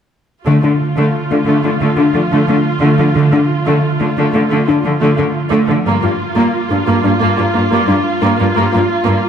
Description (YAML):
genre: cinematic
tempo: 89 BPM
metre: 4/4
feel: straight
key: D minor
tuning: A4 = 439 Hz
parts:
  - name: warm symphonic viola section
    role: accompaniment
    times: 0.5-9.3 s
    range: A3 to F4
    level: -15 LUFS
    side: right 2 dB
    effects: none
  - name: harp-like synth pluck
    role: arpeggios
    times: 0.5-9.2 s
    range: D3 to F4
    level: -16 LUFS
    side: left 1 dB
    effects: chorus, phaser, digital delay
  - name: rich symphonic cello section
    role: bass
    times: 0.5-9.1 s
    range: G2 to D3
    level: -17 LUFS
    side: left 1 dB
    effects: none
room: wet scoring stage reverb, RT60 1.9 s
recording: none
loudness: -11 LUFS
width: side -8 dB against mid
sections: 0.5-9.3 A section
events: none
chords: 0.5 Dm; 5.9 Gm7